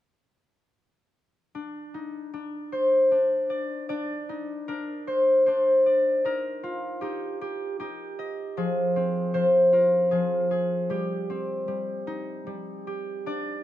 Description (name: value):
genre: children's music, lullaby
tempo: 77 BPM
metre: 3/4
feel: rubato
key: C minor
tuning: A4 = 445 Hz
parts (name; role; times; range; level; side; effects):
- concert harp; solo; 1.5-13.6 s; F3 to Eb5; -24 LUFS; equal; none
room: little or no reverb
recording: close, detailed microphones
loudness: -23 LUFS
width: side -13 dB against mid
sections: 1.6-3.9 A section; 3.9-13.6 B section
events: none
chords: 1.6 Cmadd9; 6.3 Ebadd9; 8.6 Fm; 10.9 Cm/G; 12.5 N.C.